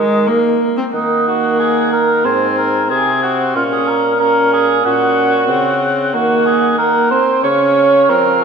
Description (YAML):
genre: classical, renaissance-style consort dance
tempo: 92 BPM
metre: 4/4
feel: straight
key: Eb dorian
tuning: A4 = 441 Hz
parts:
  - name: warm oboe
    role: melody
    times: 0.0-8.4 s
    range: Eb5 to Ab5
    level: -21 LUFS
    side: left 5 dB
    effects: none
  - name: mellow cor anglais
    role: second line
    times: 0.0-8.4 s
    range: Eb4 to Db5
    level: -15 LUFS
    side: right 3 dB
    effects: none
  - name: rich viola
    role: accompaniment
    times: 0.0-8.4 s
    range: Ab3 to Db4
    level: -18 LUFS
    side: left 1 dB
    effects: none
  - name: warm bassoon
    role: bass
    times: 0.0-8.4 s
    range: Ab2 to F3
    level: -18 LUFS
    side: right 2 dB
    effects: none
room: wet concert hall reverb, RT60 1.9 s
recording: minimal, uncompressed stereo recording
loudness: -11 LUFS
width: side -6 dB against mid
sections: 0.9-8.4 A section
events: none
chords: 0.0 Eb5; 0.9 Ebm; 2.2 Ab; 3.5 Bbm; 4.8 Gb/Bb; 6.1 Ebm; 7.4 Db